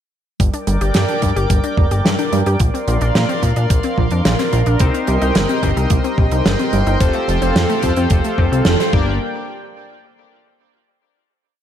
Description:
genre	synthwave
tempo	109 BPM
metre	4/4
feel	straight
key	G minor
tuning	A4 = 440 Hz
part	chorused pulse-width pad	sustained chords	0.6-9.2 s	A4 to D6	-22 LUFS	right 1 dB	sidechain pumping
part	analog pluck	arpeggios	0.4-9.2 s	F3 to G4	-23 LUFS	equal	chorus, vintage 12-bit sampler grit, ping-pong delay
part	fat analog bass	bass	0.4-9.2 s	F1 to Bb2	-18 LUFS	equal	none
part	electronic kick drum	drums	0.4-9.0 s	none	-17 LUFS	equal	none
part	gated 80s drum kit	drums	0.4-8.9 s	hi-hat, snare drum	-20 LUFS	right 1 dB	none
part	chorused polysynth	stabs	4.8-9.1 s	Bb3 to D5	-22 LUFS	left 4 dB	ping-pong delay
room	light reverb, small room ambience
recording	dark, warm production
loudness	-14 LUFS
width	side -10 dB against mid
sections	0.4-9.2 verse; 9.2-11.4 final hit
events	band accent 8.7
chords	0.4 Gm; 2.6 Bbadd9; 4.8 Cm7; 7.0 Fadd9; 8.9 Gm; 9.2 N.C.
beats	| 0.40 0.95 1.50 2.05 | 2.60 3.15 3.70 4.25 | 4.80 5.35 5.90 6.45 | 7.00 7.55 8.11 8.66

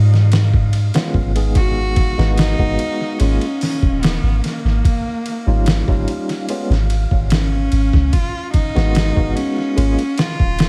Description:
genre	trip hop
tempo	73 BPM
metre	4/4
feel	straight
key	G# dorian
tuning	A4 = 439 Hz
part	soft 808-style bass	bass	0.0-10.7 s	D#1 to G#2	-18 LUFS	equal	none
part	wind-like tuned noise texture	texture	0.0-10.7 s	E#5	-38 LUFS	equal	built-in reverb
part	trip hop sampler-style drum kit	drums	0.1-10.7 s	hi-hat, kick drum, ride cymbal, snare drum	-21 LUFS	equal	tape echo
part	barky tine electric piano	accompaniment	0.9-10.0 s	G3 to G#4	-27 LUFS	equal	overdrive, tremolo, tape echo
part	rich cello	melody	1.6-10.7 s	A#3 to F#4	-25 LUFS	equal	tape echo
room	little or no reverb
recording	echo-heavy mix, vinyl crackle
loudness	-17 LUFS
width	mono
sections	0.0-10.7 A section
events	none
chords	0.0 C#7/G#; 1.6 G#m7; 3.2 A#m7; 4.8 D#9; 6.5 C#7/G#; 8.1 G#m7; 9.8 A#m7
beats	0.73 | 1.56 2.38 3.20 4.02 | 4.84 5.67 6.49 7.31 | 8.13 8.95 9.78 10.60

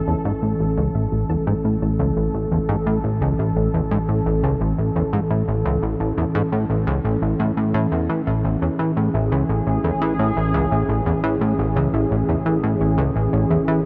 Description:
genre	ambient, sequencer-driven space music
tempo	86 BPM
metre	4/4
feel	straight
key	A major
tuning	A4 = 436 Hz
part	sweeping resonant pad	sustained chords	0.0-13.9 s	E3 to A4	-25 LUFS	equal	chorus
part	soft round pluck	arpeggios	0.0-13.6 s	A4 to A5	-38 LUFS	equal	none
part	plucky analog bass	riff	0.0-13.8 s	A1 to E3	-23 LUFS	equal	delay
part	analog drone	bass	0.1-13.9 s	A1	-33 LUFS	equal	none
room	moderate huge ambient reverb, RT60 7.9 s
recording	none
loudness	-21 LUFS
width	mono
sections	0.0-13.9 A section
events	none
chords	0.0 A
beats	| 0.07 0.77 1.47 2.17 | 2.87 3.56 4.26 4.96 | 5.66 6.35 7.05 7.75 | 8.45 9.14 9.84 10.54 | 11.24 11.93 12.63 13.33

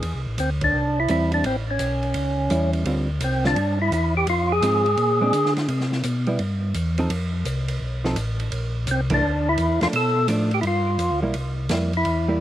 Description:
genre	soul jazz organ trio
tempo	170 BPM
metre	4/4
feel	swing 66% on 8ths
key	A minor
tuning	A4 = 440 Hz
part	hollow-body jazz guitar	accompaniment	0.0-12.4 s	D3 to A4	-26 LUFS	right 2 dB	slapback echo
part	mellow tonewheel organ	bass	0.0-12.4 s	A1 to D3	-24 LUFS	equal	chorus vibrato, slow rotary speaker
part	open jazz drum kit	drums	0.0-12.2 s	hi-hat, kick drum, ride cymbal, snare drum	-32 LUFS	right 2 dB	none
part	percussive tonewheel organ	melody	0.4-5.5, 8.9-12.4 s	C4 to A4	-22 LUFS	equal	slow rotary speaker, overdrive, slapback echo
room	little or no reverb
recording	recorded outdoors, with no room sound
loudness	-20 LUFS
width	side -12 dB against mid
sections	0.0-11.3 A section; 11.3-12.4 B section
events	band accent 0.6, 9.0; tonewheel organ solo 11.3-12.4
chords	0.0 Am7; 1.4 A7; 2.9 Dm11; 4.3 Fm7; 5.0 Bb9; 5.7 Cmaj7; 7.1 F; 8.5 Bbmaj9#11; 9.9 Bm7b5; 10.6 G7; 11.3 C7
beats	| 0.03 0.38 0.74 1.09 | 1.45 1.80 2.15 2.51 | 2.86 3.21 3.57 3.92 | 4.28 4.63 4.98 5.34 | 5.69 6.04 6.40 6.75 | 7.10 7.46 7.81 8.16 | 8.52 8.87 9.23 9.58 | 9.93 10.29 10.64 10.99 | 11.35 11.70 12.05

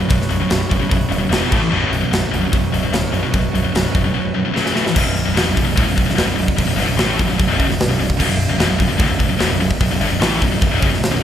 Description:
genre	heavy metal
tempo	148 BPM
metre	4/4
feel	straight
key	unclear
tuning	A4 = 439 Hz
part	pipe organ, plenum	sustained chords	0.0-5.0 s	E3 to C#5	-31 LUFS	right 1 dB	none
part	heavy high-gain guitar	riff	0.0-11.2 s	B1 to A3	-22 LUFS	right 6 dB	distortion
part	scooped high-gain guitar	riff	0.0-11.2 s	B1 to A3	-20 LUFS	left 5 dB	distortion
part	growling picked electric bass	bass	0.0-11.2 s	B0 to A1	-23 LUFS	equal	overdrive
part	tight metal drum kit	drums	0.1-11.1 s	crash cymbal, hi-hat, kick drum, snare drum	-19 LUFS	equal	none
room	moderate church reverb, RT60 3.5 s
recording	band playing live in one room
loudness	-14 LUFS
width	side -10 dB against mid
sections	0.0-5.0 A section; 5.0-11.2 B section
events	drum fill 4.5-5.0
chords	0.0 B5; 1.3 E5; 1.5 A5; 1.7 B5; 4.5 F#5; 4.8 A5; 5.0 Bm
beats	| 0.09 0.50 0.91 1.31 | 1.72 2.12 2.52 2.93 | 3.33 3.74 4.14 4.55 | 4.95 5.36 5.76 6.16 | 6.57 6.97 7.38 7.78 | 8.18 8.59 8.99 9.40 | 9.80 10.21 10.61 11.02

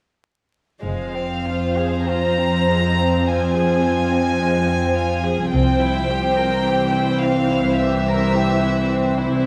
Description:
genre	classical, slow romantic movement for string orchestra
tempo	53 BPM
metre	4/4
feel	rubato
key	F minor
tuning	A4 = 440 Hz
part	warm chamber violin section	melody	0.8-9.5 s	E5 to Bb5	-27 LUFS	equal	none
part	warm chamber violin section	second line	0.8-9.5 s	Ab3 to C5	-26 LUFS	equal	none
part	warm chamber viola section	accompaniment	0.8-9.5 s	E3 to C4	-24 LUFS	equal	none
part	dark chamber cello section	bass	0.8-9.5 s	C2 to F2	-25 LUFS	equal	none
part	warm chamber double bass section	bass	0.8-6.6 s	F1 to C2	-26 LUFS	equal	none
room	wet scoring stage reverb, RT60 1.5 s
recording	vinyl crackle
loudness	-19 LUFS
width	mono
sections	0.8-9.5 A section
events	none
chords	0.8 Fm; 5.5 C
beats	| 0.83 2.10 3.26 4.39 | 5.52 6.66 7.78 8.90

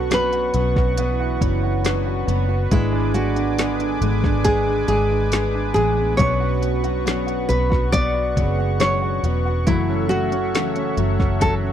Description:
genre	pop ballad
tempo	69 BPM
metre	4/4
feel	straight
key	unclear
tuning	A4 = 441 Hz
part	nylon-string guitar	melody	0.0-11.5 s	E4 to D5	-23 LUFS	equal	tape echo
part	mellow French horn section	second line	0.0-11.4 s	D3 to A4	-29 LUFS	right 17 dB	none
part	clear concert grand piano	accompaniment	0.0-11.7 s	F#3 to F#4	-28 LUFS	right 5 dB	none
part	warm analog pad	sustained chords	0.0-11.7 s	A4 to D6	-30 LUFS	right 1 dB	chorus
part	picked steel-string acoustic guitar	arpeggios	0.0-11.7 s	F#2 to G#4	-27 LUFS	left 18 dB	tape echo
part	vintage muted fingered electric bass	bass	0.0-11.7 s	E1 to B1	-22 LUFS	equal	none
part	smooth R&B drum kit	drums	0.1-11.6 s	hi-hat, kick drum, snare drum	-22 LUFS	equal	none
room	little or no reverb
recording	dry, close 1970s-style studio recording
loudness	-18 LUFS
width	side -10 dB against mid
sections	0.0-11.7 A section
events	none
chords	0.0 Bmadd9; 2.7 G#dim; 6.2 Bmadd9; 9.7 F#m7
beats	0.11 0.98 1.85 | 2.72 3.59 4.46 5.33 | 6.20 7.07 7.93 8.80 | 9.68 10.54 11.41

